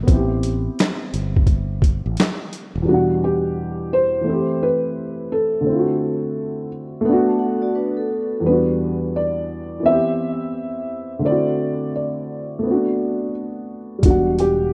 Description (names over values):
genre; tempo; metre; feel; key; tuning
lo-fi hip hop; 86 BPM; 4/4; swing 65% on 16ths; A dorian; A4 = 440 Hz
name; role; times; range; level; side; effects
dark upright piano; accompaniment; 0.0-14.7 s; E2 to F#5; -23 LUFS; equal; low-pass filter
fretless electric bass; bass; 0.0-2.9, 14.0-14.7 s; D#1 to A1; -25 LUFS; equal; none
boom bap sampler-style drum kit; drums; 0.1-2.7, 14.0-14.6 s; handclaps, hi-hat, kick drum, snare drum; -20 LUFS; equal; none
felt-muted upright piano; melody; 2.9-14.7 s; F#4 to E5; -24 LUFS; equal; low-pass filter
vibraphone with soft mallets; second line; 7.1-8.4 s; D4 to A5; -28 LUFS; equal; low-pass filter, analog delay
room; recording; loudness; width
moderate lush hall reverb, RT60 2.5 s; rough home demo mix; -20 LUFS; mono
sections
0.0-2.9 A section; 2.9-14.7 B section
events
break 0.0-2.9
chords
0.1 Am9; 2.9 Em7; 4.3 Am7/E; 5.7 D7; 7.1 Bm7; 8.4 Em7; 9.8 Cmaj7/E; 11.2 D7; 12.6 Bm7; 14.0 Em7